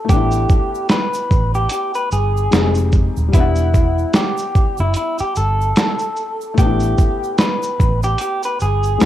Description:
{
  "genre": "lo-fi hip hop",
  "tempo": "74 BPM",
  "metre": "4/4",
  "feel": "swing 58% on 16ths",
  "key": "unclear",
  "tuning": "A4 = 439 Hz",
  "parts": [
    { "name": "electric guitar through a small old amp", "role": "melody", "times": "0.0-9.1 s", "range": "E4 to B4", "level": "-20 LUFS", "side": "equal", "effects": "low-pass filter, cassette tape" },
    { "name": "felt-muted upright piano", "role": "accompaniment", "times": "0.0-9.1 s", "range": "G3 to F#5", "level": "-25 LUFS", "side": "left 8 dB", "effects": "low-pass filter, cassette tape" },
    { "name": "vintage muted fingered electric bass", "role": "bass", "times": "0.1-9.1 s", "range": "Eb1 to A1", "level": "-18 LUFS", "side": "right 1 dB", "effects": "none" },
    { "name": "dusty soul sampler-style drum kit", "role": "drums", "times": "0.1-9.1 s", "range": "hi-hat, kick drum, shaker, snare drum", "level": "-16 LUFS", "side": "right 1 dB", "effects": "vintage 12-bit sampler grit, cassette tape" },
    { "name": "egg shaker", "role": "percussion", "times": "0.1-9.1 s", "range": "none", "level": "-41 LUFS", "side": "right 11 dB", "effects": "none" }
  ],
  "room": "light reverb, digital ambience",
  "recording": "home recording on cassette",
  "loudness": "-14 LUFS",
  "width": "side -12 dB against mid",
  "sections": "0.0-9.1 A section",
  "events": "none",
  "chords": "0.1 A9sus4; 2.5 Fm7; 3.3 Em7; 6.6 A9sus4",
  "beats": "| 0.09 0.90 1.72 2.53 | 3.34 4.15 4.96 5.77 | 6.58 7.39 8.20 9.01"
}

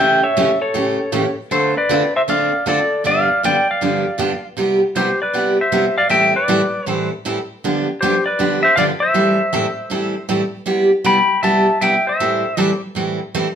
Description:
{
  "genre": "country",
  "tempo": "157 BPM",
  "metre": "4/4",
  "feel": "swing 66% on 8ths",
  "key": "unclear",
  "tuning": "A4 = 439 Hz",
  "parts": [
    { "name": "clean lap steel guitar", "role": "melody", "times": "0.0-12.8 s", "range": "G4 to B5", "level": "-16 LUFS", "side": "left 1 dB", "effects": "none" },
    { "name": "picked steel-string acoustic guitar", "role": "accompaniment", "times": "0.0-13.5 s", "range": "G2 to A4", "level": "-18 LUFS", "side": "right 2 dB", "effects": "none" }
  ],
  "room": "wet studio reverb, RT60 0.8 s",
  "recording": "band playing live in one room",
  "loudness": "-15 LUFS",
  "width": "side -8 dB against mid",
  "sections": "0.0-13.6 A section",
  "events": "none",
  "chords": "0.0 A7; 1.5 Dm7; 3.0 G7; 4.6 Cmaj7; 6.1 Am7; 7.6 G7; 9.2 Am7; 10.7 Cmaj7; 12.2 Am7",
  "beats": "0.36 0.75 1.13 | 1.51 1.90 2.28 2.66 | 3.05 3.43 3.81 4.20 | 4.58 4.96 5.34 5.72 | 6.11 6.49 6.87 7.25 | 7.63 8.01 8.39 8.78 | 9.16 9.54 9.92 10.30 | 10.68 11.06 11.44 11.82 | 12.20 12.58 12.96 13.34"
}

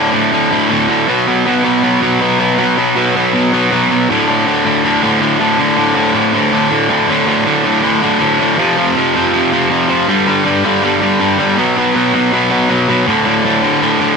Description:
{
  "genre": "punk",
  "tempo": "160 BPM",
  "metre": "4/4",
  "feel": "straight",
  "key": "D major",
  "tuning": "A4 = 439 Hz",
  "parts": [
    { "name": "cranked stack guitar", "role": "solo", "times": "0.0-14.2 s", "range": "D2 to B3", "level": "-10 LUFS", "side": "equal", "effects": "overdrive" }
  ],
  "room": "light reverb",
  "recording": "band playing live in one room",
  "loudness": "-10 LUFS",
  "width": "side -5 dB against mid",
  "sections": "0.0-7.1 A section; 7.1-14.2 B section",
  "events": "none",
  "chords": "0.0 D5; 1.1 B5; 4.1 D5; 8.6 F5; 10.1 G5; 11.6 B5; 13.1 D5",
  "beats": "0.32 0.70 | 1.08 1.45 1.83 2.21 | 2.58 2.96 3.33 3.71 | 4.08 4.46 4.83 5.21 | 5.59 5.96 6.34 6.71 | 7.09 7.46 7.83 8.21 | 8.58 8.96 9.33 9.70 | 10.08 10.45 10.82 11.20 | 11.57 11.94 12.32 12.69 | 13.06 13.44 13.81"
}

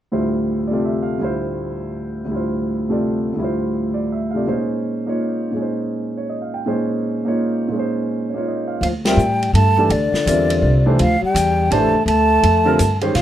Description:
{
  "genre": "modal jazz",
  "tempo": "166 BPM",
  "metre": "3/4",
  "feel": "swing 64% on 8ths",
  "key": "unclear",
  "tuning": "A4 = 440 Hz",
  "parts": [
    { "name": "warm grand piano", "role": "accompaniment", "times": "0.1-13.1 s", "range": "D2 to G5", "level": "-20 LUFS", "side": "right 1 dB", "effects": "none" },
    { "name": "mellow hollow silver concert flute", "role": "melody", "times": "8.8-13.2 s", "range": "D5 to A5", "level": "-18 LUFS", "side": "right 2 dB", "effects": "none" },
    { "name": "breathy trombone", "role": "second line", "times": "8.8-13.2 s", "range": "D3 to A3", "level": "-21 LUFS", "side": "left 5 dB", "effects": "none" },
    { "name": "upright bass", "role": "bass", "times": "8.8-13.2 s", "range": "A1 to Bb2", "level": "-18 LUFS", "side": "equal", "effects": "none" },
    { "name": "vintage drum kit", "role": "drums", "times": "8.8-13.2 s", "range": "hi-hat, ride cymbal, snare drum", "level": "-27 LUFS", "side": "equal", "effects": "none" }
  ],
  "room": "light reverb",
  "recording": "none",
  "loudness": "-16 LUFS",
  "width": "side -11 dB against mid",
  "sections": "0.1-8.8 A section; 8.8-13.2 B section",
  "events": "band accent 9.0",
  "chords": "0.1 Dm11; 4.5 Bbm11; 8.8 Dm11",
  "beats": "| 0.13 0.49 0.85 | 1.21 1.57 1.94 | 2.30 2.66 3.02 | 3.38 3.75 4.11 | 4.47 4.83 5.19 | 5.56 5.92 6.28 | 6.64 7.00 7.37 | 7.73 8.09 8.45 | 8.81 9.18 9.54 | 9.90 10.26 10.62 | 10.98 11.34 11.70 | 12.06 12.43 12.79 | 13.14"
}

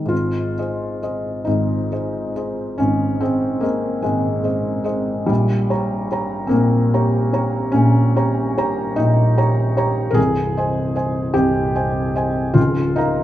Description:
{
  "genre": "classical, romantic nocturne for solo piano",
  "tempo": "38-51 BPM (dotted quarters)",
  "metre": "12/8",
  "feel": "rubato",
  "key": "unclear",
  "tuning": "A4 = 440 Hz",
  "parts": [
    { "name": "felt-muted upright piano", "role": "solo", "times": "0.0-13.2 s", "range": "C1 to Bb5", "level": "-17 LUFS", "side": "equal", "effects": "none" }
  ],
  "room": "moderate recital hall reverb, RT60 1.4 s",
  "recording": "close, detailed microphones",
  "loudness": "-17 LUFS",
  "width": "side -13 dB against mid",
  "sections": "0.1-13.2 A section",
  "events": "none",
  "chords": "0.1 Ab; 5.3 Gdim/Bb; 10.2 Ab/C; 12.6 Bbm/Db",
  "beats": "| 0.11 1.48 2.79 4.05 | 5.30 6.53 7.74 8.97 | 10.17 11.36 12.57"
}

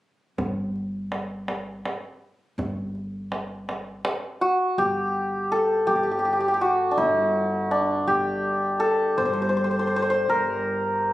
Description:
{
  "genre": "Persian modal ensemble",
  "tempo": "55 BPM (dotted quarters)",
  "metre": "6/8",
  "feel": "straight",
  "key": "G avaz esfahan",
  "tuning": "A4 = 440 Hz",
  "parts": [
    { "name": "upright bass", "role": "bass", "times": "0.4-11.1 s", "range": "G1", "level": "-32 LUFS", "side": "equal", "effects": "none" },
    { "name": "tombak", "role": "percussion", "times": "0.4-4.2 s", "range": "none", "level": "-30 LUFS", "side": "right 1 dB", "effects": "none" },
    { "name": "santur", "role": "melody", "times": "4.4-11.1 s", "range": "D4 to C5", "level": "-21 LUFS", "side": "equal", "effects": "none" }
  ],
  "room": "light reverb",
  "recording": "recorded on a phone in the room, studio reverb, compression",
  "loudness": "-22 LUFS",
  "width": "side -15 dB against mid",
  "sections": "0.4-4.8 A section; 4.8-11.1 B section",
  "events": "none",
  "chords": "none",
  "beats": "| 0.38 1.48 | 2.58 3.68 | 4.78 5.88 | 6.98 8.08 | 9.18 10.28"
}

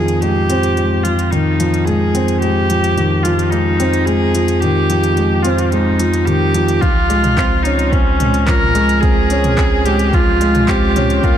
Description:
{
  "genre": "piano and strings electronica",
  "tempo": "109 BPM",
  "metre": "4/4",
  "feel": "straight",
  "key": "unclear",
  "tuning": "A4 = 440 Hz",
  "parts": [
    { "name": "clear viola", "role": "melody", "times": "0.0-11.4 s", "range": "Db4 to Bb4", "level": "-18 LUFS", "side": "right 1 dB", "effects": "digital delay" },
    { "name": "dark concert grand piano", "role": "riff", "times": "0.0-11.4 s", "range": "Eb3 to Db4", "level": "-16 LUFS", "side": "equal", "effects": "digital delay" },
    { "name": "warm sub bass", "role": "bass", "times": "0.0-11.4 s", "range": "Db2 to F2", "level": "-19 LUFS", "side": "equal", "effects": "sidechain pumping" },
    { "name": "organic electronic drum kit", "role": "drums", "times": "0.1-11.3 s", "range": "handclaps, hi-hat, toms", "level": "-24 LUFS", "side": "right 1 dB", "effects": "overdrive, studio reverb" },
    { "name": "electronic kick drum", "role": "drums", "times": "6.8-11.3 s", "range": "none", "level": "-16 LUFS", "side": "equal", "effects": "overdrive, studio reverb" }
  ],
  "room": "moderate huge ambient reverb, RT60 4.5 s",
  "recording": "dark, warm production",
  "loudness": "-12 LUFS",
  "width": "side -10 dB against mid",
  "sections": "0.0-11.4 A section",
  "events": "build-up 0.0-11.4",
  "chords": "0.0 Fm7; 6.8 Dbmaj7",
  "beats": "| 0.22 0.77 1.32 1.88 | 2.42 2.98 3.53 4.08 | 4.63 5.18 5.73 6.28 | 6.83 7.38 7.93 8.48 | 9.03 9.58 10.13 10.68 | 11.23"
}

